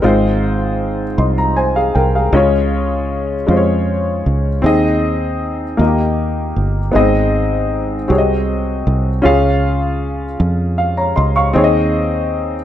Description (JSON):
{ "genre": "slow gospel", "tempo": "52 BPM (dotted quarters)", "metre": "6/8", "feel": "straight", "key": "Ab major", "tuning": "A4 = 440 Hz", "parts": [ { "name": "warm upright piano", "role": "accompaniment", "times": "0.0-12.6 s", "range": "Ab2 to Db6", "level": "-15 LUFS", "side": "left 1 dB", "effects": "none" }, { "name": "fingered electric bass", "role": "bass", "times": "0.0-12.6 s", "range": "G1 to F2", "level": "-17 LUFS", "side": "right 1 dB", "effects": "none" } ], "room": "light reverb, studio reverb", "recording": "none", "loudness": "-13 LUFS", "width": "side -11 dB against mid", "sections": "0.0-12.6 A section", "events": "upright piano fill 10.4-11.6", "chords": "0.0 Fm/Ab; 2.3 Db; 4.6 Ab/Eb; 5.8 Eb; 6.9 Ab; 8.1 Ab7/C; 9.3 Db; 11.6 Ab/Eb", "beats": "| 0.04 1.19 | 2.34 3.49 | 4.64 5.79 | 6.95 8.10 | 9.25 10.40 | 11.56" }